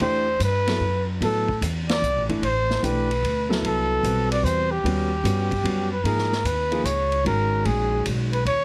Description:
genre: modal jazz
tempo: 149 BPM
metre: 3/4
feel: swing 66% on 8ths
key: A dorian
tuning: A4 = 437 Hz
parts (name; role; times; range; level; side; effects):
- breathy trumpet; melody; 0.0-8.6 s; G4 to D5; -26 LUFS; equal; none
- warm concert grand piano; accompaniment; 0.0-8.4 s; D#3 to B4; -29 LUFS; equal; none
- upright bass; bass; 0.0-8.6 s; G1 to A2; -28 LUFS; equal; none
- vintage drum kit; drums; 0.0-8.6 s; hi-hat, kick drum, ride cymbal, snare drum; -34 LUFS; equal; none
room: light reverb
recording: heavily compressed radio sound, multiband compression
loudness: -23 LUFS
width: mono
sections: 0.0-6.0 A section; 6.0-8.6 B section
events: band accent 1.8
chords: 0.0 Am9; 4.8 D#7alt; 6.0 G#m11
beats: | 0.01 0.41 0.81 | 1.22 1.62 2.02 | 2.42 2.83 3.23 | 3.63 4.04 4.44 | 4.84 5.24 5.65 | 6.05 6.45 6.85 | 7.26 7.66 8.06 | 8.46

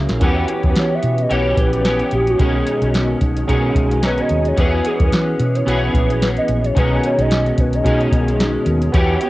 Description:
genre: indie pop, bedroom pop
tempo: 110 BPM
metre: 4/4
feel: swing 55% on 16ths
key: B major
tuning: A4 = 440 Hz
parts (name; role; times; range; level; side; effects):
- electric guitar at the edge of break-up; accompaniment; 0.0-9.3 s; B2 to G#4; -20 LUFS; left 1 dB; ensemble chorus, warbly pitch drift, cassette tape
- warm analog keys; accompaniment; 0.0-9.3 s; B3 to B4; -24 LUFS; right 3 dB; chorus, cassette tape
- vintage muted fingered electric bass; bass; 0.0-9.2 s; A#1 to E3; -20 LUFS; equal; none
- soft vintage rhythm box; drums; 0.1-9.3 s; hi-hat, kick drum, snare drum; -19 LUFS; equal; cassette tape
- hollow clarinet-like synth lead; melody; 0.8-8.0 s; F#4 to E5; -22 LUFS; equal; analog chorus, cassette tape, tape echo
room: light reverb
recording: home recording on cassette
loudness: -14 LUFS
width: side -18 dB against mid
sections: 0.2-9.3 A section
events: drum fill 0.0; soft synth lead solo 0.2-9.3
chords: 0.2 Em6; 2.4 B69; 4.6 E6; 6.8 B69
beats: | 0.21 0.76 1.30 1.85 | 2.39 2.94 3.48 4.03 | 4.58 5.12 5.67 6.21 | 6.76 7.30 7.85 8.39 | 8.94

